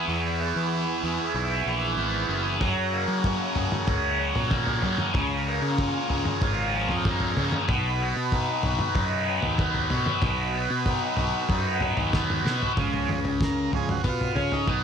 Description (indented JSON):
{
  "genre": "psychedelic rock",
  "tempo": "95 BPM",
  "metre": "4/4",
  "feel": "straight",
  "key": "unclear",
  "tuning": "A4 = 444 Hz",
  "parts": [
    { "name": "overdriven combo organ", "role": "sustained chords", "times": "0.0-14.8 s", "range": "F3 to Db6", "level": "-32 LUFS", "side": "right 8 dB", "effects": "none" },
    { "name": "fuzz guitar", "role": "riff", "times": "0.0-14.8 s", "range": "E2 to Db5", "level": "-26 LUFS", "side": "left 1 dB", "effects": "distortion, phaser" },
    { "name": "fuzz fingered electric bass", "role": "bass", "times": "0.1-14.8 s", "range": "Gb1 to Gb3", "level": "-30 LUFS", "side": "equal", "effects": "overdrive" },
    { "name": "cloth-damped thuddy drum kit", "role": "drums", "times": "2.6-14.8 s", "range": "kick drum, snare drum, toms", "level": "-28 LUFS", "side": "equal", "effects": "none" }
  ],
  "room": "studio reverb",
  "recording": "none",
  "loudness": "-23 LUFS",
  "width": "side -7 dB against mid",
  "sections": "0.0-12.8 A section; 12.8-14.8 B section",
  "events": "drum fill 12.5-12.8; transistor combo organ solo 12.8-14.8",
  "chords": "0.0 E; 2.6 Gbadd9; 5.2 Db6; 7.7 Cb; 12.8 Db"
}